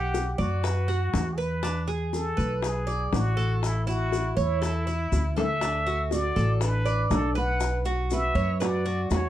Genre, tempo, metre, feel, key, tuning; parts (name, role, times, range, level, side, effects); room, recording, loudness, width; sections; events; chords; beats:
latin, Cuban son and guajira; 120 BPM; 4/4; straight; D major; A4 = 440 Hz
trumpet with plunger mute; melody; 0.0-9.3 s; E4 to F#5; -31 LUFS; left 1 dB; plate reverb
Cuban tres; arpeggios; 0.0-9.3 s; D4 to F#5; -32 LUFS; right 3 dB
upright bass; bass; 0.0-9.3 s; A1 to F#2; -27 LUFS; equal
bongos; percussion; 0.1-9.3 s; -33 LUFS; left 6 dB
maracas; percussion; 0.1-9.3 s; -43 LUFS; left 4 dB
nylon-string guitar; second line; 5.4-9.3 s; D4 to B4; -32 LUFS; right 2 dB
light reverb; dark, warm production; -24 LUFS; side -12 dB against mid
0.0-9.3 A section
drum fill 5.1-5.6
0.0 Bm; 1.6 E7; 3.6 A; 5.6 D; 7.6 Bmadd9
0.14 0.64 1.14 | 1.64 2.14 2.63 3.13 | 3.63 4.13 4.62 5.12 | 5.62 6.12 6.62 7.11 | 7.61 8.11 8.61 9.10